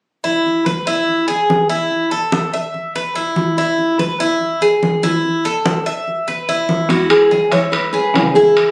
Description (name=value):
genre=latin, Cuban son and guajira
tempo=144 BPM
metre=4/4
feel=straight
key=E major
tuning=A4 = 440 Hz
part: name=Cuban tres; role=arpeggios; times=0.2-8.7 s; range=E4 to E5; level=-19 LUFS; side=equal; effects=none
part: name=congas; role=percussion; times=0.2-8.7 s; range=none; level=-24 LUFS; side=equal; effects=none
part: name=nylon-string guitar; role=melody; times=6.9-8.7 s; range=F#4 to C#5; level=-15 LUFS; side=equal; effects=none
part: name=clear cello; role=bass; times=6.9-8.7 s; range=E2 to E3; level=-24 LUFS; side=equal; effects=none
part: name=timbales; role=percussion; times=6.9-8.7 s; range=none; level=-22 LUFS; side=equal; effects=none
room=moderate studio ambience, RT60 0.5 s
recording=recorded on a phone in the room, studio reverb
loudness=-16 LUFS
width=mono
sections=0.2-6.9 A section; 6.9-8.7 B section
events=none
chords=0.2 E; 1.9 B7sus4 (rootless); 3.6 E; 5.2 B7sus4; 6.9 E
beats=| 0.24 0.66 1.08 1.50 | 1.91 2.33 2.75 3.16 | 3.58 3.99 4.41 4.83 | 5.24 5.66 6.07 6.49 | 6.90 7.32 7.73 8.15 | 8.56